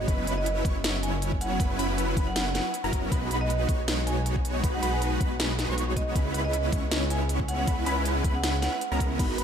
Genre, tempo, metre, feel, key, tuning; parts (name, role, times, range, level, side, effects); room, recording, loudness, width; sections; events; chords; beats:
future bass; 158 BPM; 4/4; swing 54% on 16ths, half-time; A4 = 441 Hz
marimba with hard mallets; melody; 0.0-9.2 s; D#5 to G#5; -34 LUFS; right 2 dB; sidechain pumping, diffuse ambient delay
wide unison pluck; arpeggios; 0.0-9.4 s; A#5 to C#6; -38 LUFS; left 1 dB; sidechain pumping, tape echo
supersaw chords; riff; 0.0-9.4 s; F#3 to C#5; -30 LUFS; right 1 dB; analog chorus, sidechain pumping
wide detuned saw bass; bass; 0.0-9.4 s; F#1 to C#2; -29 LUFS; equal; chorus, tube saturation, sidechain pumping
electronic kick drum; drums; 0.1-9.3 s; -28 LUFS; equal; overdrive
trap drum kit; drums; 0.1-9.4 s; crash cymbal, hi-hat, snare drum; -32 LUFS; equal
mellow tine electric piano; accompaniment; 9.2-9.4 s; B3 to A#4; -33 LUFS; right 3 dB; medium stereo tremolo, sidechain pumping
light reverb; -24 LUFS; side -8 dB against mid
0.0-9.4 A section
0.1 F#7sus4; 3.1 B6; 6.2 C#m7
| 0.08 0.46 0.84 1.22 | 1.60 1.98 2.36 2.74 | 3.12 3.50 3.88 4.26 | 4.64 5.02 5.40 5.78 | 6.16 6.54 6.92 7.29 | 7.67 8.05 8.43 8.81 | 9.19